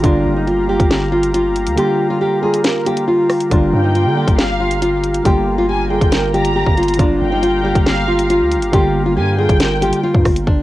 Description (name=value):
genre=hip hop, drill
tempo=138 BPM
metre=4/4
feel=half-time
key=G minor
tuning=A4 = 440 Hz
part: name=nylon-string guitar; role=melody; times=0.0-10.6 s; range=D4 to Bb4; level=-17 LUFS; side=equal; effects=low-pass filter, plate reverb
part: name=warbly lo-fi synth keys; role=accompaniment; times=0.0-10.5 s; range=D3 to F4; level=-20 LUFS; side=equal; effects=chorus, low-pass filter, cassette tape
part: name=warm analog pad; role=sustained chords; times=0.0-10.4 s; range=G4 to Bb5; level=-26 LUFS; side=left 1 dB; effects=chorus, cassette tape, plate reverb
part: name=long sustained 808-style bass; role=bass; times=0.0-10.6 s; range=G1 to D3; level=-20 LUFS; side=equal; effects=none
part: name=drill drum kit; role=drums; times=0.0-10.6 s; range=hi-hat, kick drum, rim click, snare drum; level=-16 LUFS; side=equal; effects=none
part: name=warm studio violin section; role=second line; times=3.7-10.0 s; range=F5 to Bb5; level=-23 LUFS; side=left 1 dB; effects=cassette tape, tape echo, plate reverb
room=moderate studio reverb, RT60 0.6 s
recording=home recording on cassette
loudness=-13 LUFS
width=side -16 dB against mid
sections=0.0-10.5 A section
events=kick muted 1.8-3.5; hi-hats muted 10.5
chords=0.0 Gm7